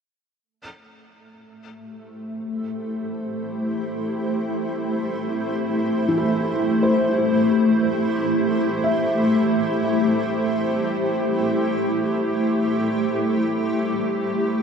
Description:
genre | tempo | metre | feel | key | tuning
ambient | free time | none | none | A minor | A4 = 440 Hz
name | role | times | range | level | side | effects
granular cloud pad | sustained chords | 1.9-14.6 s | A3 to C5 | -20 LUFS | equal | built-in reverb
felt-muted upright piano | arpeggios | 6.1-14.6 s | E3 to E5 | -27 LUFS | equal | ping-pong delay
room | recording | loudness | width
wet huge ambient reverb, RT60 8.0 s | none | -20 LUFS | side -6 dB against mid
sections
0.4-14.6 A section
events
none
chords
0.4 Am7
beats
free time

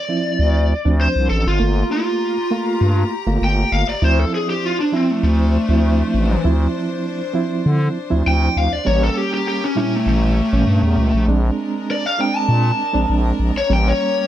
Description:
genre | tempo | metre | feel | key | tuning
blues | 99 BPM | 4/4 | straight | D minor | A4 = 441 Hz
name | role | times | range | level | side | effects
lead guitar through a small cranked amp | melody | 0.0-14.3 s | A3 to A5 | -20 LUFS | left 1 dB | overdrive
reed electric piano | accompaniment | 0.1-14.3 s | Bb2 to F4 | -22 LUFS | right 4 dB | fast tremolo
growling FM bass | bass | 0.4-13.9 s | G1 to D3 | -17 LUFS | equal | none
bright chamber string section | sustained chords | 1.6-14.3 s | Ab3 to Bb5 | -29 LUFS | left 4 dB | plate reverb
room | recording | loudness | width
light reverb | none | -15 LUFS | side -12 dB against mid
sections
0.0-14.3 A section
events
lead electric guitar solo 0.0-14.3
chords
0.0 Dm7; 1.6 Gm7; 4.0 Dm7; 8.9 A7b9; 11.3 Bb7; 13.7 A7b9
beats
0.39 1.00 | 1.60 2.21 2.81 3.42 | 4.03 4.63 5.24 5.84 | 6.45 7.05 7.66 8.26 | 8.87 9.47 10.07 10.68 | 11.28 11.89 12.49 13.10 | 13.70

